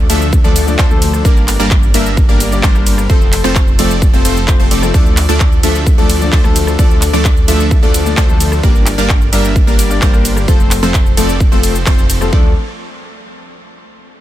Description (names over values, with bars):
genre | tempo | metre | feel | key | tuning
EDM, festival progressive house | 130 BPM | 4/4 | straight | D minor | A4 = 440 Hz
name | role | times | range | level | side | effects
supersaw stab | riff | 0.0-12.5 s | F3 to E5 | -17 LUFS | right 1 dB | sidechain pumping, tape echo
wide detuned saw bass | bass | 0.0-12.5 s | F1 to D2 | -16 LUFS | equal | chorus, sidechain pumping
clear grand piano | accompaniment | 0.1-12.5 s | F3 to D5 | -20 LUFS | left 7 dB | sidechain pumping, tape echo
big-room dance drum kit | drums | 0.1-12.3 s | cabasa, handclaps, hi-hat, ride cymbal, rim click | -20 LUFS | equal | none
electronic kick drum | drums | 0.3-12.4 s | none | -11 LUFS | equal | none
room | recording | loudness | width
digital ambience | none | -9 LUFS | side -13 dB against mid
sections
0.0-12.3 A section; 12.3-14.2 B section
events
drop 0.0-12.3; band accent 11.9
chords
0.0 Dm; 1.2 Gm; 3.1 F; 4.9 Dm; 8.6 Gm; 10.5 F; 12.3 Dm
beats
0.33 0.79 | 1.25 1.71 2.17 2.63 | 3.10 3.56 4.02 4.48 | 4.94 5.40 5.87 6.33 | 6.79 7.25 7.71 8.17 | 8.63 9.10 9.56 10.02 | 10.48 10.94 11.40 11.87 | 12.33